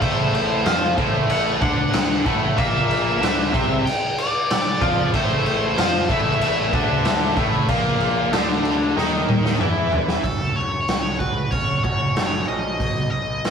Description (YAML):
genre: quiet-loud alternative rock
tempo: 94 BPM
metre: 4/4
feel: straight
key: unclear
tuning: A4 = 440 Hz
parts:
  - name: nasal lead guitar with a parked wah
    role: melody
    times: 0.0-13.5 s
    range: A4 to G5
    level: -25 LUFS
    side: left 1 dB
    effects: overdrive
  - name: biting overdriven guitar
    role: riff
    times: 0.0-10.2 s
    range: A2 to F4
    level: -23 LUFS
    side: left 4 dB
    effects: none
  - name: high-gain distorted guitar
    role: riff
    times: 0.0-10.2 s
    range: A2 to F4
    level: -25 LUFS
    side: right 7 dB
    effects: distortion
  - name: fuzz picked electric bass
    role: bass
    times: 0.0-13.5 s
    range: F#1 to F2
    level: -29 LUFS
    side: equal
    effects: overdrive
  - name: raw garage drum kit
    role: drums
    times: 0.0-13.5 s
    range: crash cymbal, hi-hat, kick drum, snare drum, toms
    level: -22 LUFS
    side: equal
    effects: none
  - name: picked swing-style acoustic guitar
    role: arpeggios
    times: 10.3-13.5 s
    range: F#2 to F#4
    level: -31 LUFS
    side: right 6 dB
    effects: none
room: light reverb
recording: rough rehearsal-room recording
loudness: -18 LUFS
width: side -7 dB against mid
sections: 0.0-10.2 A section; 10.2-13.5 B section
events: drum fill 9.0-10.2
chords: 0.0 Am; 10.2 F#m; 12.8 B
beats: | 0.01 0.66 1.30 1.94 | 2.58 3.21 3.85 4.49 | 5.13 5.77 6.41 7.05 | 7.69 8.32 8.96 9.60 | 10.24 10.88 11.52 12.16 | 12.80 13.44